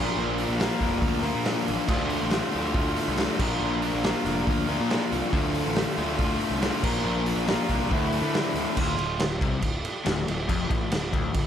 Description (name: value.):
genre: classic rock.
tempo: 140 BPM.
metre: 4/4.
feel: straight.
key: D minor.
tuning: A4 = 441 Hz.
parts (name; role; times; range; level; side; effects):
mellow tonewheel organ; sustained chords; 0.0-11.5 s; D4 to D5; -38 LUFS; right 4 dB; none.
overdriven electric guitar; riff; 0.0-11.5 s; D2 to Bb4; -28 LUFS; left 7 dB; none.
tight distorted guitar; riff; 0.0-9.3 s; D2 to Bb4; -31 LUFS; right 15 dB; distortion.
fuzz picked electric bass; bass; 0.0-11.5 s; D1 to D3; -31 LUFS; right 1 dB; overdrive.
raw garage drum kit; drums; 0.4-11.4 s; crash cymbal, hi-hat, kick drum, snare drum; -28 LUFS; right 1 dB; none.
room: light reverb, studio reverb.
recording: none.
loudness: -23 LUFS.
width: side -9 dB against mid.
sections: 0.0-8.8 A section; 8.8-11.5 B section.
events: none.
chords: 0.0 Bb; 1.9 Dm; 3.4 Bb; 5.3 Dm; 6.8 Bb; 7.9 Dsus2; 8.8 Dm.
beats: | 0.16 0.59 1.02 1.46 | 1.89 2.32 2.75 3.18 | 3.61 4.04 4.47 4.90 | 5.33 5.76 6.19 6.62 | 7.05 7.48 7.91 8.34 | 8.77 9.20 9.63 10.06 | 10.49 10.92 11.35.